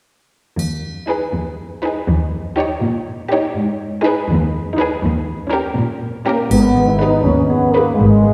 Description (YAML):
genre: cinematic, playful, whimsical film cue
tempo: 81 BPM (dotted quarters)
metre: 6/8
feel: straight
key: G# minor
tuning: A4 = 440 Hz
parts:
  - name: dark chamber cello section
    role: bass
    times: 0.6-8.3 s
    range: D#2 to A#2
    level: -22 LUFS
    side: equal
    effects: none
  - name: triangle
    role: percussion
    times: 0.6-1.5, 6.5-7.5 s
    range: none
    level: -35 LUFS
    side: equal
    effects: none
  - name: warm chamber violin section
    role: melody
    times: 1.1-7.9 s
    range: A#4 to C#5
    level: -27 LUFS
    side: equal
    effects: none
  - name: warm chamber violin section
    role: second line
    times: 1.1-7.9 s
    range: G4 to B4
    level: -27 LUFS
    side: equal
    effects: none
  - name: dark chamber viola section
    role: accompaniment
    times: 1.1-7.9 s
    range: C#4 to G#4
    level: -26 LUFS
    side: equal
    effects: none
  - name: warm French horn section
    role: sustained chords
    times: 6.3-8.3 s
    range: G#3 to E4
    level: -16 LUFS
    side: equal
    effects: none
  - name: concert harp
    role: arpeggios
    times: 6.5-8.3 s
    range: G#2 to B4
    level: -22 LUFS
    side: equal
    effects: none
  - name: warm symphonic double bass section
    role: bass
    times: 6.5-8.3 s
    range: G#1 to D#2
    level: -22 LUFS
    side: equal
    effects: none
room: wet scoring stage reverb, RT60 2.1 s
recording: heard from further back in the room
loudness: -17 LUFS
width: mono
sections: 0.6-6.5 A section; 6.5-8.3 B section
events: none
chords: 0.6 G#m/D#; 2.1 D#7; 3.5 G#m; 5.0 D#7; 6.5 G#m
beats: | 0.59 1.33 | 2.07 2.81 | 3.55 4.28 | 5.02 5.76 | 6.51 7.26 | 8.00